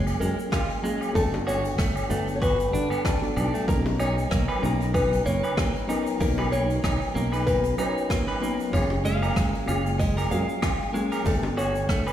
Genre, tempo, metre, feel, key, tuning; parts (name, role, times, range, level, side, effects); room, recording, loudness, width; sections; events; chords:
sunset chillout; 95 BPM; 4/4; swing 56% on 16ths; B lydian; A4 = 440 Hz
soft electric-piano-like synth keys; accompaniment; 0.0-12.1 s; F#3 to A#5; -31 LUFS; left 1 dB; chorus, auto-pan, tape echo
clean electric guitar; arpeggios; 0.0-12.1 s; G#3 to B4; -32 LUFS; right 2 dB; tape echo
sustaining fretless electric bass; bass; 0.0-12.0 s; F#1 to F#2; -27 LUFS; equal; ensemble chorus
jazz brush drum kit; drums; 0.1-12.1 s; hi-hat, rim click, shaker, woodblock; -31 LUFS; equal
nylon-string guitar; melody; 0.2-12.1 s; A4 to E#5; -30 LUFS; left 2 dB; tape echo
electronic kick drum; drums; 0.5-12.0 s; -28 LUFS; equal; overdrive
bongos; percussion; 0.5-11.5 s; -37 LUFS; left 4 dB
moderate lush hall reverb, RT60 2.1 s; played on a big sound system in a bare room, large studio reverb; -22 LUFS; side -11 dB against mid
0.0-12.1 A section
0.0 F#maj9; 1.2 Gmaj9; 3.7 Bmaj9; 8.7 F#maj9; 11.3 Gmaj9